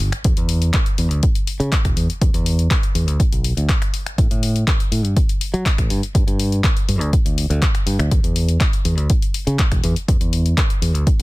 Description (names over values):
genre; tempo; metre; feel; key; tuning
filtered disco house; 122 BPM; 4/4; straight; E dorian; A4 = 440 Hz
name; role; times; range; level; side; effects
fingered electric bass; bass; 0.0-11.2 s; E1 to F#3; -19 LUFS; equal; sidechain pumping
punchy analog drum machine; drums; 0.0-11.2 s; finger snaps, handclaps, hi-hat; -25 LUFS; left 3 dB; sidechain pumping on hats
electronic kick drum; drums; 0.2-11.2 s; none; -18 LUFS; equal; none
room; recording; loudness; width
little or no reverb; dense, heavily limited modern master; -16 LUFS; side -21 dB against mid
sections
0.0-11.2 A section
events
none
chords
none